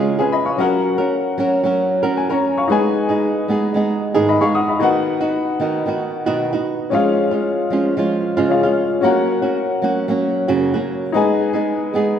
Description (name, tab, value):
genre	acoustic pop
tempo	114 BPM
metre	4/4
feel	straight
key	Db mixolydian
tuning	A4 = 440 Hz
part	clear upright piano	accompaniment	0.0-12.2 s	Db4 to Eb6	-20 LUFS	left 5 dB	none
part	flamenco guitar	accompaniment	0.0-12.2 s	Gb2 to Bb4	-18 LUFS	right 3 dB	none
room	wet concert hall reverb, RT60 2.1 s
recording	recorded in a church or concert hall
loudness	-16 LUFS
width	side -8 dB against mid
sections	0.0-12.2 A section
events	none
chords	0.0 Db; 0.6 Gb; 2.7 Abm; 4.8 Cb; 6.9 Db; 9.0 Gb; 11.1 Abm